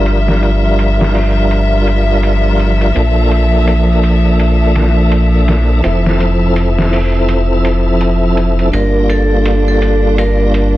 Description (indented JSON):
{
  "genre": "trip hop",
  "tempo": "83 BPM",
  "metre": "4/4",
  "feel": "swing 60% on 16ths",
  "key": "G dorian",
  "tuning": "A4 = 440 Hz",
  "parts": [
    { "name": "mellow tonewheel organ", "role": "accompaniment", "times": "0.0-10.8 s", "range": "F3 to Bb4", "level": "-15 LUFS", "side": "equal", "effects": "chorus vibrato, fast rotary speaker, tremolo, tape echo" },
    { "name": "dark chamber string section", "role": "sustained chords", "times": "0.0-10.8 s", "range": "F3 to E5", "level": "-18 LUFS", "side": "equal", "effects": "none" },
    { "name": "round analog bass", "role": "bass", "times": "0.0-10.8 s", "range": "F1 to Bb1", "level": "-13 LUFS", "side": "equal", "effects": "none" },
    { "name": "trip hop sampler-style drum kit", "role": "drums", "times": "0.1-10.7 s", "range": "hi-hat, snare drum", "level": "-22 LUFS", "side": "equal", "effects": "overdrive, low-pass filter on hats, small room ambience, low-pass filter on snare" },
    { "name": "vibraphone with medium hard mallets", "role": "melody", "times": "8.7-10.7 s", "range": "A4 to Bb4", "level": "-16 LUFS", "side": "right 2 dB", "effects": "none" }
  ],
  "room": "studio reverb",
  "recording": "dense, heavily limited modern master",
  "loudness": "-10 LUFS",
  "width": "side -15 dB against mid",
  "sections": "0.0-10.8 A section",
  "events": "none",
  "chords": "0.0 Gm7; 2.9 Bbmaj7; 5.8 Fmaj7; 8.7 Gm7"
}